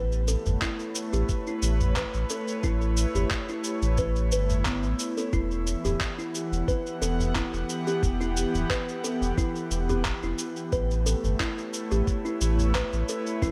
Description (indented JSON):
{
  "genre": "organic downtempo",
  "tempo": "89 BPM",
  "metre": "4/4",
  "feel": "swing 53% on 16ths",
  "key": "unclear",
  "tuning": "A4 = 443 Hz",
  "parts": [
    { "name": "airy breathy pad", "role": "sustained chords", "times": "0.0-13.5 s", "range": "E3 to F#5", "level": "-35 LUFS", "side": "equal", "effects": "chorus, sidechain pumping, shimmer reverb" },
    { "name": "kalimba", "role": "arpeggios", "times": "0.0-13.5 s", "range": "B3 to B4", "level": "-34 LUFS", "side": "equal", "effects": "digital delay, shimmer reverb" },
    { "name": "warm sub bass", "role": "bass", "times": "0.0-13.5 s", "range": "D1 to A1", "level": "-29 LUFS", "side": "equal", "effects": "sidechain pumping" },
    { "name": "electronic shaker and handclaps", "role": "drums", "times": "0.1-13.5 s", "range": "none", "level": "-36 LUFS", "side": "equal", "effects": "none" },
    { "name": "udu", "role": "percussion", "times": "0.5-12.7 s", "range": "none", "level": "-35 LUFS", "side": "equal", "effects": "none" },
    { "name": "electronic kick drum", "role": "drums", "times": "0.6-13.5 s", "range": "none", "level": "-33 LUFS", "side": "equal", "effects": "none" }
  ],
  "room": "light reverb",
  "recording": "none",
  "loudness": "-27 LUFS",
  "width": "mono",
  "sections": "0.0-13.5 A section",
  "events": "none",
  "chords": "0.0 A9; 5.3 Em; 10.7 A9"
}